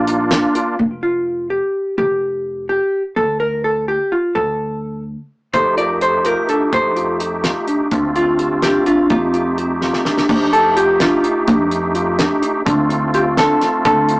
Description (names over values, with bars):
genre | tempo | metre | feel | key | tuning
progressive instrumental, band music in an uneven meter | 253 BPM (eighths) | 5/8 | straight | F mixolydian | A4 = 440 Hz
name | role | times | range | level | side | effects
vintage hollow-body jazz guitar | melody | 0.0-14.2 s | F4 to D5 | -16 LUFS | equal | none
vibraphone with medium hard mallets | second line | 0.0-0.5, 5.5-10.0 s | C4 to Bb4 | -22 LUFS | equal | none
bright tonewheel organ | accompaniment | 0.0-0.8, 5.5-14.2 s | A3 to G4 | -20 LUFS | right 1 dB | chorus vibrato
tine electric piano | arpeggios | 0.0-0.8, 5.5-14.2 s | D4 to G4 | -21 LUFS | equal | medium tremolo, digital delay
upright bass | bass | 0.0-14.2 s | F1 to F2 | -23 LUFS | equal | none
damped 70s drum kit | drums | 0.1-0.7, 5.5-14.2 s | crash cymbal, hi-hat, kick drum, snare drum | -21 LUFS | equal | none
room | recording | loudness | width
light reverb | rough rehearsal-room recording, tube saturation, small speaker sound | -14 LUFS | side -23 dB against mid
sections
0.8-10.3 A section; 10.3-14.2 B section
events
drum fill 9.8-10.3; hollow-body jazz guitar solo 10.3-14.2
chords
0.0 Bb; 0.8 Fsus2; 3.2 D5; 5.5 F9; 7.9 Dm7; 9.1 F9; 12.7 Dm7